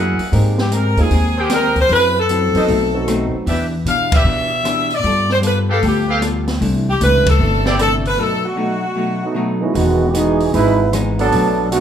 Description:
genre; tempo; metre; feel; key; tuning
jazz, big band swing; 153 BPM; 4/4; swing 66% on 8ths; unclear; A4 = 440 Hz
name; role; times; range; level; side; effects
archtop guitar, miked and amplified; accompaniment; 0.0-11.8 s; B2 to Bb4; -22 LUFS; left 2 dB; none
clear trumpet section; stabs; 0.0-7.7 s; E4 to G5; -23 LUFS; right 2 dB; none
upright bass; bass; 0.0-11.8 s; E1 to B2; -18 LUFS; equal; none
open jazz drum kit; drums; 0.2-11.8 s; hi-hat, kick drum, ride cymbal, rim click, snare drum; -23 LUFS; equal; none
warm grand piano; accompaniment; 0.3-3.4, 9.6-10.7 s; E3 to A4; -23 LUFS; right 3 dB; none
edgy saxophone section; melody; 0.6-9.6 s; F#4 to F5; -17 LUFS; left 1 dB; none
clear trombone section; second line; 9.2-11.8 s; D3 to B4; -16 LUFS; right 3 dB; none
room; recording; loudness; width
moderate large studio reverb, RT60 1.2 s; band playing live in one room; -14 LUFS; side -9 dB against mid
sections
0.0-9.8 A section; 9.8-11.8 B section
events
band accent 4.1, 7.2; break 8.2-9.8; trombone section solo 9.8-11.8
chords
0.3 Abmaj9; 1.9 F#m7b5; 2.7 B7b9; 3.5 Em7; 5.0 G9; 6.6 C69; 8.2 B7; 9.8 Emaj7

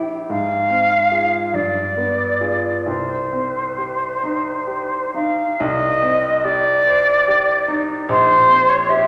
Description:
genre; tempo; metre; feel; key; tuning
classical, romantic duo for flute and grand piano; 43-51 BPM (dotted quarters); 6/8; rubato; C minor; A4 = 436 Hz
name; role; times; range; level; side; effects
clear grand piano; accompaniment; 0.0-9.1 s; Bb1 to C5; -26 LUFS; equal; none
concert flute; melody; 0.3-9.1 s; C5 to F5; -18 LUFS; equal; none
room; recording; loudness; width
wet scoring stage reverb, RT60 1.5 s; none; -18 LUFS; mono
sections
0.0-5.6 A section; 5.6-9.1 A section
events
none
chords
0.3 Fm/Ab; 1.5 G7b9; 2.9 Cm; 8.1 C7(no3)/Bb

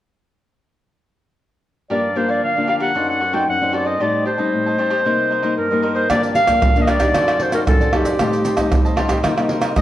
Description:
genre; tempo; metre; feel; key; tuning
samba and choro; 114 BPM; 4/4; straight; G minor; A4 = 440 Hz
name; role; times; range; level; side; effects
warm clarinet; melody; 1.9-9.8 s; G4 to G5; -18 LUFS; equal; slapback echo
cavaquinho; accompaniment; 1.9-9.7 s; Eb4 to A5; -25 LUFS; right 2 dB; none
nylon-string guitar; accompaniment; 1.9-9.8 s; F#2 to Eb4; -22 LUFS; left 3 dB; none
maracas, surdo, pandeiro and tamborim; percussion; 6.1-9.8 s; none; -18 LUFS; right 1 dB; none
room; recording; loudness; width
wet large studio reverb, RT60 1.3 s; worn, warbling old tape, cassette tape, warbly pitch drift; -15 LUFS; side -13 dB against mid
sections
1.9-6.1 A section; 6.1-9.8 B section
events
none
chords
1.9 Gm7; 2.9 D7b9/F#; 4.0 Am7b5; 5.0 Cm7; 6.1 Gm7; 7.1 D7b9/F#; 8.2 Am7b5; 9.2 Cm7

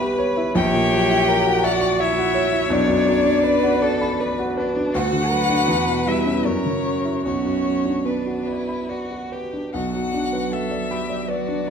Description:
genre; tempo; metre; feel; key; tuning
classical, slow romantic movement for piano quartet; 70-84 BPM; 3/4; rubato; B minor; A4 = 440 Hz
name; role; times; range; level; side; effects
rich violin; melody; 0.0-11.7 s; B4 to G5; -24 LUFS; left 6 dB; none
rich cello; second line; 0.0-11.7 s; F#3 to G4; -25 LUFS; right 8 dB; none
rich violin; second line; 0.0-11.7 s; D4 to D5; -27 LUFS; left 2 dB; none
warm grand piano; accompaniment; 0.0-11.7 s; A#1 to C#6; -22 LUFS; equal; none
room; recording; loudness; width
wet recital hall reverb, RT60 1.3 s; dark, warm production; -18 LUFS; side -7 dB against mid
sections
0.0-9.7 A section; 9.7-11.7 B section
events
none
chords
0.0 C#m7b5/B; 0.5 F#7/A#; 2.7 Bm; 4.9 Bm/D; 5.7 C#m7b5/E; 6.5 F#7; 7.2 Bm

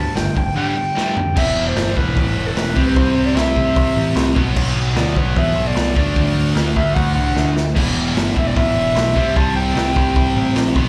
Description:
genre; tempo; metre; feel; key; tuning
punk rock; 150 BPM; 4/4; straight; E minor; A4 = 440 Hz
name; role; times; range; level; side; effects
mellow clarinet; melody; 0.0-10.7 s; A4 to A5; -24 LUFS; equal; slapback echo
distorted electric guitar; riff; 0.0-10.9 s; E2 to D4; -27 LUFS; equal; overdrive, slapback echo
raw garage guitar; riff; 0.0-10.9 s; E2 to D4; -25 LUFS; equal; overdrive
growling picked electric bass; bass; 0.0-10.9 s; E1 to E2; -23 LUFS; equal; overdrive
raw garage drum kit; drums; 0.2-10.8 s; crash cymbal, hi-hat, kick drum, snare drum, toms; -22 LUFS; equal; none
room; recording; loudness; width
small room ambience; live gig heard through the venue's PA, club reverb; -17 LUFS; mono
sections
0.0-1.4 A section; 1.4-10.9 B section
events
clarinet solo 0.0-1.4; drum fill 1.0-1.4, 7.4-7.8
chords
0.0 G5; 1.4 Em; 2.8 C; 4.4 Bm; 6.0 D; 7.8 Em; 9.2 C5

